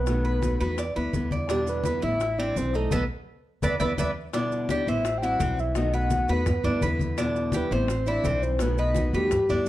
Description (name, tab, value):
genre	latin, Cuban son and guajira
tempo	169 BPM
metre	4/4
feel	straight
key	E minor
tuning	A4 = 437 Hz
part	soft octave-layered synth lead	melody	0.0-9.7 s	G4 to G5	-28 LUFS	equal	chorus, plate reverb
part	nylon-string guitar	accompaniment	0.0-9.7 s	B2 to F#4	-30 LUFS	left 2 dB	none
part	upright bass	bass	0.0-9.7 s	A1 to E2	-29 LUFS	equal	none
part	bongos	percussion	0.1-9.7 s	none	-37 LUFS	left 6 dB	none
part	congas	percussion	0.1-9.7 s	none	-31 LUFS	left 1 dB	none
part	maracas	percussion	0.1-9.7 s	none	-45 LUFS	right 10 dB	none
part	Cuban tres	arpeggios	0.2-9.7 s	C4 to E5	-31 LUFS	right 2 dB	none
room	light reverb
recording	dark, warm production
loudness	-23 LUFS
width	side -15 dB against mid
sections	0.0-4.3 A section; 4.3-9.7 B section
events	band accent 2.9-4.3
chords	0.1 B7; 0.8 Em7; 2.2 Am7; 2.9 B7; 3.6 Em7; 5.0 Am7; 5.8 B7; 6.5 Em7; 7.9 Am7; 8.6 B7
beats	| 0.08 0.43 0.79 1.14 | 1.50 1.85 2.21 2.56 | 2.92 3.27 3.63 3.98 | 4.34 4.69 5.05 5.41 | 5.76 6.12 6.47 6.83 | 7.18 7.54 7.90 8.25 | 8.61 8.97 9.32 9.68